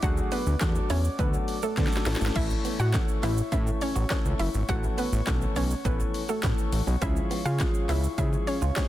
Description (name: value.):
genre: dance-pop.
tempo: 103 BPM.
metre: 4/4.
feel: straight.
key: unclear.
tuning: A4 = 440 Hz.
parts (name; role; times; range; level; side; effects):
hollow square pluck; melody; 0.0-8.9 s; A3 to F#5; -32 LUFS; equal; chorus, sidechain pumping, ping-pong delay.
warm concert grand piano; accompaniment; 0.0-8.9 s; E3 to A4; -34 LUFS; left 3 dB; sidechain pumping.
glass harmonica; sustained chords; 0.0-8.9 s; A3 to D6; -40 LUFS; equal; sidechain pumping.
direct-recorded clean electric guitar; riff; 0.0-8.7 s; A3 to F#4; -39 LUFS; right 6 dB; lush chorus.
fat analog bass; bass; 0.0-8.7 s; F#1 to D3; -27 LUFS; equal; sidechain pumping.
house drum kit; drums; 0.0-8.9 s; crash cymbal, handclaps, hi-hat, kick drum, shaker, snare drum; -28 LUFS; equal; none.
room: digital ambience.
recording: dense, heavily limited modern master.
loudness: -24 LUFS.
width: side -14 dB against mid.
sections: 0.0-8.9 A section.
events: drum fill 1.8-2.4.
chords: 0.0 D; 2.1 A; 7.0 C#.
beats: | 0.03 0.61 1.19 1.77 | 2.36 2.94 3.52 4.11 | 4.69 5.27 5.85 6.43 | 7.02 7.60 8.18 8.77.